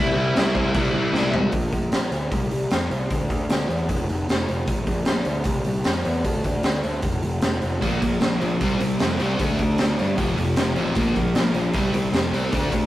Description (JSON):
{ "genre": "punk rock", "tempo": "153 BPM", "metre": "4/4", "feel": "straight", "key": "unclear", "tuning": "A4 = 439 Hz", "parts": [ { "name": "high-gain lead guitar", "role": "melody", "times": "0.0-1.3 s", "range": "E4 to E5", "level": "-25 LUFS", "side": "left 1 dB", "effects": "distortion" }, { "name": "sludgy distorted guitar", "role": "riff", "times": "0.0-1.5, 7.8-12.9 s", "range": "F2 to D4", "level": "-25 LUFS", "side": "equal", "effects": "overdrive" }, { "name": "thick fuzz guitar", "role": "riff", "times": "0.0-1.3, 7.8-12.9 s", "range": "F2 to D4", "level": "-29 LUFS", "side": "equal", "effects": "distortion" }, { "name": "fuzz picked electric bass", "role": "bass", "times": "0.0-12.9 s", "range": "F1 to G2", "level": "-24 LUFS", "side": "equal", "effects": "overdrive" }, { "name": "raw garage drum kit", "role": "drums", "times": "0.4-12.8 s", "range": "crash cymbal, hi-hat, kick drum, snare drum, toms", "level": "-24 LUFS", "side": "equal", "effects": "none" } ], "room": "light reverb", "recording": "rough rehearsal-room recording, warm saturation", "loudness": "-20 LUFS", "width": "side -15 dB against mid", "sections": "0.0-1.5 A section; 1.5-12.9 B section", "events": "drum fill 1.1-1.5", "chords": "0.0 C; 1.5 Bb; 2.3 Csus4; 3.1 Dsus2; 3.9 N.C.; 4.7 Bb; 5.5 C; 6.3 N.C.; 7.8 Bb5; 8.6 C5; 9.4 D5; 10.2 F; 11.0 Bb5; 11.7 C5", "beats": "0.36 0.75 1.14 | 1.53 1.93 2.32 2.71 | 3.10 3.50 3.89 4.28 | 4.68 5.07 5.46 5.86 | 6.25 6.64 7.04 7.43 | 7.82 8.22 8.61 9.00 | 9.39 9.79 10.18 10.57 | 10.96 11.36 11.75 12.14 | 12.53" }